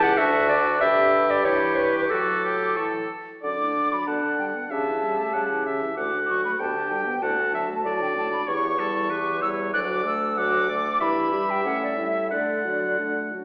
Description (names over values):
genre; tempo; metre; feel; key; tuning
quick classical-period movement for wind quintet; 94 BPM; 2/4; rubato; D major; A4 = 440 Hz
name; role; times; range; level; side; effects
silver concert flute; melody; 0.0-13.0 s; D5 to F#6; -30 LUFS; equal; none
clear oboe; second line; 0.0-13.3 s; F#4 to G5; -29 LUFS; equal; none
clear clarinet; accompaniment; 0.0-13.4 s; C#4 to F#5; -29 LUFS; equal; none
mellow French horn; accompaniment; 0.0-13.4 s; F#2 to B3; -36 LUFS; equal; none
mellow bassoon; bass; 0.0-13.3 s; C#2 to D3; -31 LUFS; equal; none
room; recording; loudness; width
wet recital hall reverb, RT60 1.5 s; heard from further back in the room, AM radio sound; -24 LUFS; mono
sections
0.0-3.4 A section; 3.4-13.4 B section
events
none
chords
0.2 D; 0.8 G; 1.4 Em/G; 2.1 D/A; 2.8 A5; 3.4 D/F#; 4.1 G/B; 4.7 A7/C#; 6.0 D; 6.6 G/D; 7.2 D; 8.5 C#dim/E; 9.7 D; 11.0 Em/G; 11.7 A7; 12.3 D